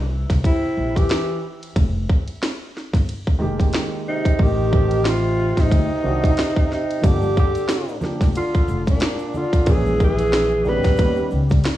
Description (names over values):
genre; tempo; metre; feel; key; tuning
hip hop, jazz-hop; 91 BPM; 4/4; swing 58% on 16ths; unclear; A4 = 439 Hz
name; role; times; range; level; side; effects
mellow alto saxophone; melody; 0.0-11.3 s; D4 to Cb5; -22 LUFS; right 1 dB; none
growling tenor saxophone; second line; 0.0-11.3 s; Bb2 to G3; -28 LUFS; left 3 dB; tape echo
upright bass; bass; 0.0-11.6 s; F1 to Eb2; -22 LUFS; equal; none
garage drum kit; drums; 0.3-11.8 s; hi-hat, kick drum, ride cymbal, snare drum; -19 LUFS; equal; vintage 12-bit sampler grit
dark concert grand piano; accompaniment; 3.4-11.4 s; Eb3 to Ab4; -26 LUFS; right 3 dB; none
tube shaker and congas; percussion; 7.0-11.8 s; none; -33 LUFS; right 1 dB; none
room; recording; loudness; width
studio reverb; worn, warbling old tape, cassette tape, warbly pitch drift; -17 LUFS; side -14 dB against mid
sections
0.0-11.8 A section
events
none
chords
0.0 C7; 1.8 Fm11; 4.4 Am7b5; 5.7 D7b9; 7.0 Gm7; 9.7 Bbm7b5; 11.0 Ebaug7